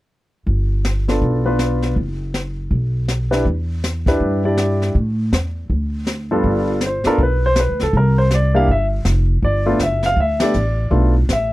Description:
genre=jazz piano trio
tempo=161 BPM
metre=4/4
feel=swing 63% on 8ths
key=G mixolydian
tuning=A4 = 440 Hz
part: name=upright bass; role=bass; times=0.5-11.5 s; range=F1 to A2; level=-18 LUFS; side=equal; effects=none
part: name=jazz brush drum kit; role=drums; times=0.5-11.5 s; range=brushed snare drum, hi-hat, kick drum, ride cymbal, snare drum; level=-22 LUFS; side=equal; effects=none
part: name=warm baby grand piano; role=melody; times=1.1-11.5 s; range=G2 to F5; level=-18 LUFS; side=equal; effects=none
room=little or no reverb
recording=dry, close 1970s-style studio recording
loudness=-16 LUFS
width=side -17 dB against mid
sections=0.5-6.4 A section; 6.4-11.5 B section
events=band accent 10.4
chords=0.5 G7; 2.0 N.C.; 3.5 Em7; 5.0 A5; 5.7 D5; 6.4 G7; 7.9 C7(no3); 9.4 G7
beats=| 0.47 0.84 1.22 1.59 | 1.96 2.34 2.71 3.08 | 3.46 3.83 4.21 4.58 | 4.95 5.33 5.70 6.07 | 6.45 6.82 7.19 7.57 | 7.94 8.31 8.68 9.06 | 9.43 9.80 10.18 10.55 | 10.92 11.29

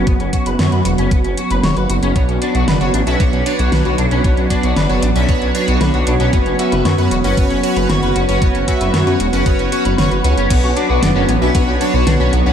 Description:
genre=synthwave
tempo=115 BPM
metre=4/4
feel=straight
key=B minor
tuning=A4 = 440 Hz
part: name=warm analog pad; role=sustained chords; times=0.0-12.5 s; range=F#3 to F#4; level=-20 LUFS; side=right 2 dB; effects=chorus, sidechain pumping
part: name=electric guitar at the edge of break-up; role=arpeggios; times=0.0-12.5 s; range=B3 to C#5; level=-22 LUFS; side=left 2 dB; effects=ensemble chorus, low-pass filter, analog delay
part: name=wide detuned saw bass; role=bass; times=0.0-12.5 s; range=E1 to F#2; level=-17 LUFS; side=equal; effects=chorus, sidechain pumping
part: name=electronic kick drum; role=drums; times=0.1-11.7 s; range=none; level=-16 LUFS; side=equal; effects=studio reverb
part: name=pop drum kit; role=drums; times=0.1-12.4 s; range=crash cymbal, hi-hat, snare drum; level=-22 LUFS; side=equal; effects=studio reverb
part: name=chorused polysynth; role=stabs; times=2.2-12.5 s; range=C#4 to F#5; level=-20 LUFS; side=equal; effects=analog delay
part: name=electric guitar at the edge of break-up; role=riff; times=10.5-12.5 s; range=B3 to B4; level=-22 LUFS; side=left 4 dB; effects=analog chorus, analog delay
room=moderate plate reverb, RT60 2.8 s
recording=dreamy mix soaked in reverb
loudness=-13 LUFS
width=side -8 dB against mid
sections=0.0-10.5 A section; 10.5-12.5 B section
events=none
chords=0.0 F#sus4; 2.2 Bmadd9; 6.3 F#sus4; 10.5 Bmadd9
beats=| 0.07 0.59 1.11 1.64 | 2.16 2.68 3.20 3.72 | 4.24 4.76 5.29 5.81 | 6.33 6.85 7.37 7.89 | 8.42 8.94 9.46 9.98 | 10.50 11.03 11.55 12.07

